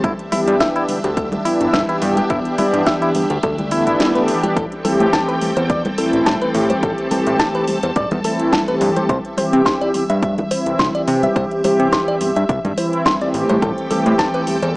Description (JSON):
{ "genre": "nu-disco, nu disco", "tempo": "106 BPM", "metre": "4/4", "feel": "swing 54% on 16ths", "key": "A minor", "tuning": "A4 = 445 Hz", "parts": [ { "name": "mellow synth brass", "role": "accompaniment", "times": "0.0-14.6 s", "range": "E3 to G4", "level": "-19 LUFS", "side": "equal", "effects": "chorus, cassette tape, sidechain pumping, tape echo" }, { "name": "string machine, full ensemble", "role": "sustained chords", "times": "0.0-14.8 s", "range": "C4 to A5", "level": "-27 LUFS", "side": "equal", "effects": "phaser, ensemble chorus, sidechain pumping" }, { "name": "direct-recorded clean electric guitar", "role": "riff", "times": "0.0-14.7 s", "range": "E3 to C6", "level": "-21 LUFS", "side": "left 1 dB", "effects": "wide subtle chorus, tape echo" }, { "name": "fat analog bass", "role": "bass", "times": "0.0-14.8 s", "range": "G1 to C3", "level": "-20 LUFS", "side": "equal", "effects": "tube saturation" }, { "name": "electronic kick drum", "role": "drums", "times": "0.0-14.3 s", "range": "none", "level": "-24 LUFS", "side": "equal", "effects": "overdrive" }, { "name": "house drum kit", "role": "drums", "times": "0.0-14.7 s", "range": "hi-hat, snare drum", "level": "-25 LUFS", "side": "equal", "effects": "overdrive" }, { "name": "congas", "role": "percussion", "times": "0.3-14.6 s", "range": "none", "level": "-27 LUFS", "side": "equal", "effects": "none" }, { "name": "swell", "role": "sound effects", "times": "3.7-4.6 s", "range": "none", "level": "-27 LUFS", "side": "left 1 dB", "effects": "none" } ], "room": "light reverb, digital ambience", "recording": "dry, gritty hardware recording, small speaker sound", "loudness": "-15 LUFS", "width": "side -23 dB against mid", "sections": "0.0-14.8 A section", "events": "kick drops out 4.0-4.6", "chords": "0.0 Em7/G; 4.6 Am7; 9.1 C; 13.3 Am7" }